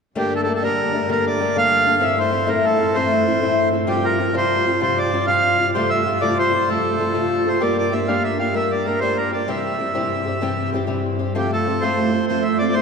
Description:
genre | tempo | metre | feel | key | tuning
celtic folk | 129 BPM (dotted quarters) | 12/8 | straight | G dorian | A4 = 440 Hz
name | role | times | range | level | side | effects
accordion | melody | 0.2-12.8 s | G4 to F5 | -20 LUFS | right 2 dB | none
fingerpicked twelve-string acoustic guitar | accompaniment | 0.2-12.8 s | F2 to G4 | -20 LUFS | left 1 dB | none
clear symphonic string section | drone | 0.2-12.8 s | G2 | -29 LUFS | left 2 dB | none
room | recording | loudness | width
wet cathedral reverb, RT60 4.4 s | recorded in a church or concert hall | -17 LUFS | side -5 dB against mid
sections
0.2-12.8 A section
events
none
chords
0.2 Gmadd9; 2.0 Am; 3.9 Csus4; 5.7 Fadd9; 7.6 Gm; 9.5 C; 11.4 F

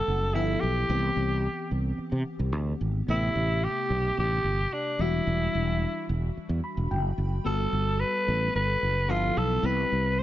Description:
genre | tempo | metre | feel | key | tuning
polished 1980s jazz-funk pop | 110 BPM | 4/4 | straight | G major | A4 = 440 Hz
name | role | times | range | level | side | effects
growling alto saxophone | melody | 0.0-10.2 s | D4 to C5 | -28 LUFS | equal | none
FM electric piano with soft pad layer | accompaniment | 0.0-10.2 s | C3 to B5 | -33 LUFS | left 3 dB | wide subtle chorus
fretless electric bass | bass | 0.1-10.2 s | E1 to C3 | -28 LUFS | equal | none
room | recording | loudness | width
light reverb, studio ambience | nothing above 7.8 kHz | -25 LUFS | side -13 dB against mid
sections
0.0-10.2 A section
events
FM electric piano fill 6.4-7.5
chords
0.3 G13; 0.9 Cmaj7; 3.1 Am9; 5.0 Em9; 7.5 Gmaj9; 9.1 G13; 9.6 Cmaj7

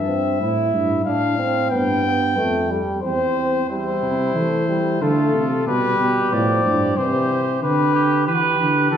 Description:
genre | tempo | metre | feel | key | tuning
classical, imitative canzona for brass ensemble | 92 BPM | 3/4 | straight | C major from 3.7 s | A4 = 439 Hz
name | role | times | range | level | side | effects
mellow trumpet | melody | 0.0-9.0 s | F#4 to G5 | -23 LUFS | left 5 dB | none
clear euphonium | accompaniment | 0.0-7.6 s | E3 to E4 | -23 LUFS | right 2 dB | none
mellow tuba | bass | 0.0-9.0 s | E2 to E3 | -22 LUFS | right 1 dB | none
mellow trumpet | second line | 3.7-9.0 s | E4 to B4 | -23 LUFS | right 4 dB | none
room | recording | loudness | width
wet recital hall reverb, RT60 1.8 s | recorded in a church or concert hall | -17 LUFS | side -8 dB against mid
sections
0.0-3.7 A section; 3.7-9.0 B section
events
none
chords
0.0 C/G; 1.1 Dm/A; 1.7 G; 3.0 C/E; 5.0 Dm; 5.7 G/B; 7.0 C; 7.6 G/D

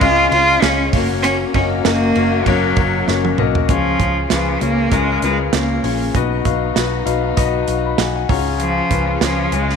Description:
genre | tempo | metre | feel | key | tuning
piano-driven pop | 98 BPM | 4/4 | swing 56% on 16ths | unclear | A4 = 437 Hz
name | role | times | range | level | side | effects
clear cello | melody | 0.0-9.8 s | E#3 to E#4 | -18 LUFS | right 1 dB | none
warm concert grand piano | accompaniment | 0.0-9.8 s | B2 to C#6 | -20 LUFS | left 12 dB | none
warm studio string section | sustained chords | 0.0-9.8 s | C#3 to G#4 | -27 LUFS | equal | none
vintage muted picked electric bass | bass | 0.0-9.8 s | F#1 to C#2 | -22 LUFS | right 1 dB | none
modern studio drum kit | drums | 0.0-9.8 s | hi-hat, kick drum, ride cymbal, snare drum, toms | -21 LUFS | right 5 dB | none
room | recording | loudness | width
moderate echo chamber reverb, RT60 2.0 s | 1960s-style stereo, faint mains hum | -14 LUFS | side -6 dB against mid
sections
0.0-3.7 A section; 3.7-9.8 B section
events
drum fill 3.1-3.7; grand piano fill 7.4-8.6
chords
0.0 C#; 0.9 F#; 3.7 C#; 6.1 B; 8.3 C#

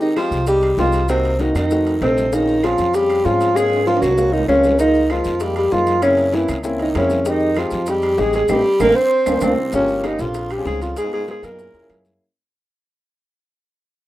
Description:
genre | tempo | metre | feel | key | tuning
Afro-Cuban jazz | 194 BPM | 4/4 | straight | F minor | A4 = 440 Hz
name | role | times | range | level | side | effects
mellow alto saxophone | melody | 0.0-12.1 s | C4 to C5 | -17 LUFS | equal | none
clear baritone saxophone | second line | 0.0-12.1 s | C2 to C4 | -25 LUFS | right 2 dB | none
warm grand piano | accompaniment | 0.0-12.2 s | Gb3 to Bb4 | -24 LUFS | left 2 dB | none
congas | percussion | 0.0-12.2 s | none | -34 LUFS | left 3 dB | none
maracas | percussion | 0.0-12.2 s | none | -41 LUFS | left 1 dB | none
bongos | percussion | 0.2-12.2 s | none | -32 LUFS | left 5 dB | none
claves | percussion | 0.2-12.1 s | none | -37 LUFS | right 1 dB | none
guiro | percussion | 0.2-12.2 s | none | -42 LUFS | left 2 dB | none
timbales | percussion | 0.2-12.1 s | none | -29 LUFS | right 7 dB | none
upright bass | bass | 0.3-12.2 s | G1 to Ab2 | -24 LUFS | equal | none
room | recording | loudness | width
moderate studio ambience, RT60 0.5 s | rough home demo mix | -15 LUFS | side -15 dB against mid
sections
0.0-9.7 A section; 9.7-12.2 B section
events
drum fill 3.6-4.8, 9.1-9.7; band accent 8.5-9.7; fade-out 9.7-12.2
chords
0.0 Fm9; 1.1 Cm7b5; 1.7 F7b9; 2.3 Bbm7; 3.6 Ab13; 4.8 Db69; 6.0 Gb7#11; 7.3 Fm9; 8.5 Am7b5; 9.1 Bbadd9; 9.7 Gm7b5; 10.3 Bbm7; 11.0 Abm13; 11.6 Gb7

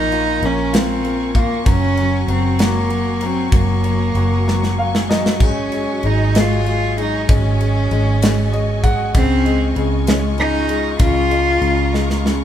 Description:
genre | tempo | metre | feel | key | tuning
six-eight pop ballad | 64 BPM (dotted quarters) | 6/8 | straight | unclear | A4 = 440 Hz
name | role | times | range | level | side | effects
warm cello | melody | 0.0-12.2 s | Bb3 to F4 | -20 LUFS | equal | none
warm grand piano | accompaniment | 0.0-12.4 s | Db3 to Gb5 | -22 LUFS | left 3 dB | none
warm symphonic string section | sustained chords | 0.0-12.4 s | Gb3 to Db6 | -29 LUFS | equal | none
vintage muted fingered electric bass | bass | 0.0-12.4 s | Gb1 to Db2 | -19 LUFS | right 1 dB | none
modern studio drum kit | drums | 0.1-12.4 s | kick drum, ride cymbal, snare drum, splash cymbal | -18 LUFS | equal | none
room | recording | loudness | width
moderate large studio reverb, RT60 1.2 s | band playing live in one room | -14 LUFS | side -10 dB against mid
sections
0.0-12.4 A section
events
drum fill 4.5-5.4, 11.9-12.4; grand piano fill 4.5-5.4, 8.2-9.1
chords
0.0 Bbm7; 1.7 Gbadd9; 5.4 Ab7sus4; 9.1 Dbadd9

